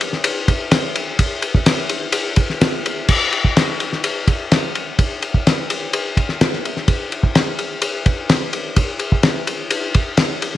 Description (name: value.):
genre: rock.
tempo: 126 BPM.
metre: 4/4.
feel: straight.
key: none.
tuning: none.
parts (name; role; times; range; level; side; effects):
cloth-damped thuddy drum kit; drums; 0.0-10.6 s; crash cymbal, kick drum, ride cymbal, snare drum; -16 LUFS; left 1 dB; none.
room: moderate plate reverb, RT60 1.0 s.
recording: 1960s-style stereo.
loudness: -16 LUFS.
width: side -13 dB against mid.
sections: 0.0-3.1 A section; 3.1-10.6 B section.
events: none.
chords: none.